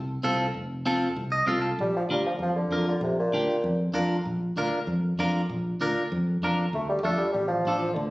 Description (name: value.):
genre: latin.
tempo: 194 BPM.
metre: 4/4.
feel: straight.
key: Bb major.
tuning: A4 = 440 Hz.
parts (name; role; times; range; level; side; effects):
fingered electric bass; bass; 0.0-8.1 s; F1 to F2; -29 LUFS; equal; none.
clean electric guitar; accompaniment; 0.2-7.9 s; C4 to A5; -27 LUFS; equal; phaser.
mellow bassoon; second line; 1.8-3.8, 6.7-8.1 s; Bb2 to A3; -26 LUFS; equal; none.
room: moderate large studio reverb, RT60 1.1 s.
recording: recorded on a phone in the room, studio reverb.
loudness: -24 LUFS.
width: side -20 dB against mid.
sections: 0.0-1.8 A section; 1.8-8.1 B section.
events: clean electric guitar fill 1.2-1.8; bassoon solo 1.8-8.1.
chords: 0.0 F; 1.8 Bb; 6.7 Dm.